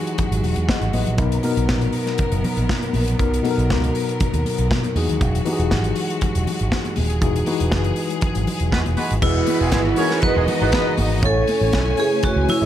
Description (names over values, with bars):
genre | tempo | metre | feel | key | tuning
disco | 119 BPM | 4/4 | straight | unclear | A4 = 440 Hz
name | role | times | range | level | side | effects
mellow tine electric piano | accompaniment | 0.0-12.7 s | B2 to F#5 | -24 LUFS | left 4 dB | medium stereo tremolo
bright symphonic string section | sustained chords | 0.0-12.7 s | C#3 to G#5 | -28 LUFS | right 1 dB | none
modern studio drum kit | drums | 0.1-12.6 s | crash cymbal, hi-hat, kick drum, snare drum | -24 LUFS | equal | none
congas | percussion | 0.2-12.6 s | none | -30 LUFS | left 3 dB | none
picked electric bass with an envelope filter | bass | 0.3-12.7 s | D#1 to B2 | -21 LUFS | right 1 dB | none
clear horn section | stabs | 8.7-10.9 s | G#3 to C#5 | -26 LUFS | right 2 dB | none
vibraphone with hard mallets | melody | 9.2-12.7 s | E4 to B4 | -21 LUFS | right 4 dB | none
warm studio violin section | second line | 9.2-12.7 s | B3 to D#5 | -26 LUFS | right 1 dB | none
room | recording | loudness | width
little or no reverb | none | -17 LUFS | side -11 dB against mid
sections
0.0-9.2 A section; 9.2-12.7 B section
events
band accent 7.2-9.2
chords
0.0 Emaj9; 1.2 Bmaj7; 5.0 Emaj9; 9.2 Emaj9#11; 11.2 Amaj7